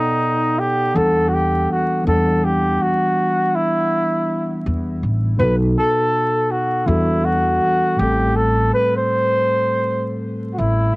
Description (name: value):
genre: lo-fi hip hop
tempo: 81 BPM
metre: 4/4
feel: swing 63% on 16ths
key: E minor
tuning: A4 = 440 Hz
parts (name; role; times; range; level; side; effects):
- breathy flugelhorn; melody; 0.0-11.0 s; D#4 to C5; -18 LUFS; equal; cassette tape
- mellow tine electric piano; accompaniment; 0.0-11.0 s; A2 to G5; -21 LUFS; equal; slow stereo tremolo, cassette tape
- upright bass; bass; 1.0-10.9 s; A1 to E2; -21 LUFS; equal; none
room: light reverb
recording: home recording on cassette, vinyl crackle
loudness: -16 LUFS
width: side -23 dB against mid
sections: 0.0-5.4 A section; 5.4-11.0 B section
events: none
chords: 0.0 B7; 0.9 Em11; 2.1 Em9; 5.4 B7; 6.9 Em11; 8.0 Am7